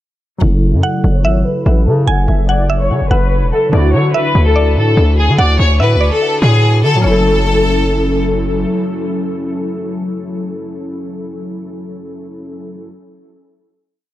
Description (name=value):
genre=hip hop, drill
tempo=145 BPM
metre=4/4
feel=half-time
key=F# minor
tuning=A4 = 440 Hz
part: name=bright studio violin section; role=melody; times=0.4-8.2 s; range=G#4 to F#5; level=-17 LUFS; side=left 2 dB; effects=low-pass filter, dub echo
part: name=warbly lo-fi synth keys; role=accompaniment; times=0.4-12.9 s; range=C#3 to A4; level=-19 LUFS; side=left 1 dB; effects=chorus, low-pass filter, dub echo
part: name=distorted 808-style bass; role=bass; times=0.4-8.7 s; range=E1 to D3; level=-12 LUFS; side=equal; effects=distortion
part: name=mallet-like synth pluck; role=second line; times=0.8-8.2 s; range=C#5 to G#5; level=-22 LUFS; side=right 2 dB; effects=chorus, dub echo
room=digital ambience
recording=echo-heavy mix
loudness=-11 LUFS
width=side -14 dB against mid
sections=0.4-7.0 breakdown; 7.0-10.4 final chord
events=filter sweep 0.4-7.0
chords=0.4 F#m7; 3.7 Dadd9; 7.0 F#m7